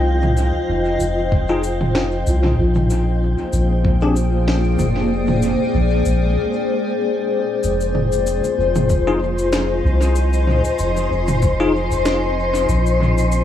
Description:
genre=ambient dub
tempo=95 BPM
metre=4/4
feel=swing 55% on 16ths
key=F dorian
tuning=A4 = 442 Hz
part: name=granular cloud pad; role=sustained chords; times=0.0-13.4 s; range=Bb3 to Ab5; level=-20 LUFS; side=left 2 dB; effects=built-in reverb
part: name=soft dub sub bass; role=bass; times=0.0-13.4 s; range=F1 to C2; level=-18 LUFS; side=equal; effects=tube saturation
part: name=wind-like tuned noise texture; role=texture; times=0.0-13.4 s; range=C5 to G5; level=-28 LUFS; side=left 3 dB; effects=built-in reverb
part: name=organic electronic drum kit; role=drums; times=0.2-13.4 s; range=cabasa, snare drum, toms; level=-24 LUFS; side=equal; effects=dub echo
part: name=electronic kick drum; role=drums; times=1.3-4.0, 8.9-11.6 s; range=none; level=-18 LUFS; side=equal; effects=none
part: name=bell-like tine electric piano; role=stabs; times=1.5-4.1, 9.1-11.7 s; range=C4 to Ab4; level=-25 LUFS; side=left 3 dB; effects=ensemble chorus, dub echo
room=light reverb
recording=echo-heavy mix, small room ambience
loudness=-16 LUFS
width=side -10 dB against mid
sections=0.0-7.6 A section; 7.6-13.4 B section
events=break 6.4-7.6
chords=0.0 F7(no3); 2.6 Bb13; 7.6 Fm7; 12.7 Bb9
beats=| 0.06 0.69 1.32 1.95 | 2.58 3.21 3.85 4.48 | 5.11 5.74 6.37 7.00 | 7.64 8.27 8.90 9.53 | 10.16 10.79 11.43 12.06 | 12.69 13.32

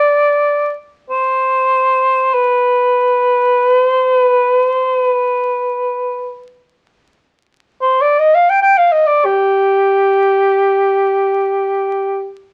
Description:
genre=caucasian folk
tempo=free time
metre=none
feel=none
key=G major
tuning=A4 = 440 Hz
part: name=dark cor anglais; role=solo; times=0.0-12.3 s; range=G4 to G5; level=-14 LUFS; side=equal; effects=none
room=moderate studio reverb, RT60 0.7 s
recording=very old 78 rpm record, vinyl crackle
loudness=-14 LUFS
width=mono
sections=0.0-12.5 A section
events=none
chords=none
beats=free time

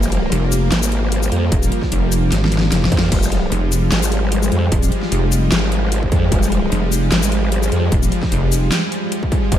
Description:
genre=heavy wobble dubstep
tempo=150 BPM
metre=4/4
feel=swing 54% on 16ths, half-time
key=F minor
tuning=A4 = 440 Hz
part: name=supersaw pad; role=sustained chords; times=0.0-9.6 s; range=F3 to Bb3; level=-21 LUFS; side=equal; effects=lush chorus, sidechain pumping
part: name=growl bass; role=bass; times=0.0-9.6 s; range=F1 to F2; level=-18 LUFS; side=equal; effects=chorus, overdrive
part: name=dubstep drum kit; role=drums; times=0.0-9.6 s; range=crash cymbal, handclaps, hi-hat, shaker, snare drum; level=-22 LUFS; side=left 2 dB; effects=none
part: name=pulsing pluck wobble bass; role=bass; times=0.3-8.7 s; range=Eb1 to Ab1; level=-17 LUFS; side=equal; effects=chorus, overdrive
part: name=electronic kick drum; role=drums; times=1.5-9.6 s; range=none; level=-19 LUFS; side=equal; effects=distortion
room=digital ambience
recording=none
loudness=-14 LUFS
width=side -11 dB against mid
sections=0.0-9.6 A section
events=drum fill 2.3-3.1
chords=0.0 Fmadd9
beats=0.32 0.72 1.12 | 1.52 1.92 2.32 2.72 | 3.12 3.52 3.92 4.32 | 4.72 5.12 5.52 5.92 | 6.32 6.72 7.12 7.52 | 7.92 8.32 8.72 9.12 | 9.52

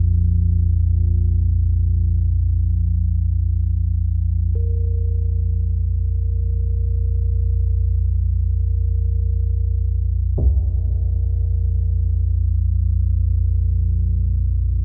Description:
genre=dark ambient drone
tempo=free time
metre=none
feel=none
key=unclear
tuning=A4 = 438 Hz
part: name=deep rumbling drone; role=drone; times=0.0-14.8 s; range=Bb1 to F2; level=-20 LUFS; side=equal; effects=built-in reverb
part: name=bronze singing bowl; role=texture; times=4.6-14.8 s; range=Bb4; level=-50 LUFS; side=equal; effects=none
part: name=taiko ensemble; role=percussion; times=10.4-10.6 s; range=none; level=-29 LUFS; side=equal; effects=low-pass filter on perc
room=wet cathedral reverb, RT60 6.3 s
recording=in a vast, echoing space, nothing above 10.5 kHz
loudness=-20 LUFS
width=mono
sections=0.0-4.6 A section; 4.6-14.8 B section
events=filter sweep on synth drone 0.0-4.6; fade-in on singing bowl 4.6-14.8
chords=0.0 Bb5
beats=free time

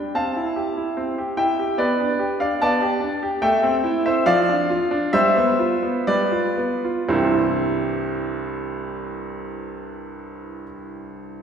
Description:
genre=classical-period piano sonatina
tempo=58-74 BPM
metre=2/4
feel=straight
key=C major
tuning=A4 = 441 Hz
part: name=clear grand piano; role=solo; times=0.0-11.4 s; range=C2 to A5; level=-20 LUFS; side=equal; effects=none
room=wet scoring stage reverb, RT60 2.0 s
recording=heard from further back in the room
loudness=-19 LUFS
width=side -7 dB against mid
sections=0.0-7.1 A section; 7.1-11.2 B section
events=slowing down 2.6-7.1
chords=0.1 C; 1.8 G/B; 3.4 Am; 4.3 Dm/F; 5.1 G7; 7.1 C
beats=| 0.15 0.98 | 1.80 2.62 | 3.44 4.27 | 5.14 6.07 | 7.09 8.13 | 9.17 10.20

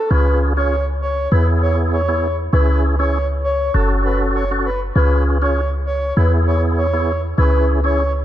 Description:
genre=dancehall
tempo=99 BPM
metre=4/4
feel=straight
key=unclear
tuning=A4 = 443 Hz
part: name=breathy flute-like synth lead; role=melody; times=0.0-8.1 s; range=A4 to C#5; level=-22 LUFS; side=equal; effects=chorus, tape echo
part: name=percussive tonewheel organ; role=accompaniment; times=0.1-8.0 s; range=B3 to A4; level=-21 LUFS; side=right 1 dB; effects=chorus vibrato, fast rotary speaker
part: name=clean 808-style bass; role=bass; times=0.1-8.2 s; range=F#1 to E2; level=-17 LUFS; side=equal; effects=none
room=light reverb, digital ambience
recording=dark, warm production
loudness=-15 LUFS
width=side -12 dB against mid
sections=0.1-8.2 A section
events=none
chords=0.1 C#; 1.3 E; 2.5 C#m; 3.7 F#m; 5.0 C#; 6.2 E; 7.4 C#m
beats=| 0.11 0.71 1.32 1.93 | 2.53 3.14 3.74 4.35 | 4.96 5.56 6.17 6.78 | 7.38 7.99

